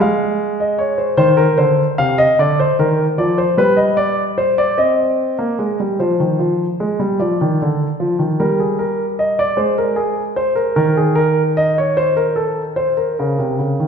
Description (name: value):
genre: classical, baroque-style two-part invention for grand piano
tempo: 50 BPM (dotted quarters)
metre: 6/8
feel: straight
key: F minor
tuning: A4 = 441 Hz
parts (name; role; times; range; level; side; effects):
- dark grand piano; solo; 0.0-13.9 s; C3 to F5; -14 LUFS; equal; none
room: wet recital hall reverb, RT60 1.4 s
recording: heard from further back in the room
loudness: -14 LUFS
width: side -6 dB against mid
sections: 0.0-6.0 A section; 6.0-13.9 B section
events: none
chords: 0.0 Fm/Ab; 1.2 Cm; 2.4 Bb/D; 3.6 G; 4.8 Cm; 6.0 Fm; 7.2 Dm; 8.4 Eb/G; 9.6 Ab; 10.8 Eb5; 12.0 Adim/Eb; 13.2 Bbm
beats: 0.01 | 1.20 2.39 | 3.58 4.78 | 5.99 7.20 | 8.40 9.59 | 10.78 11.97 | 13.18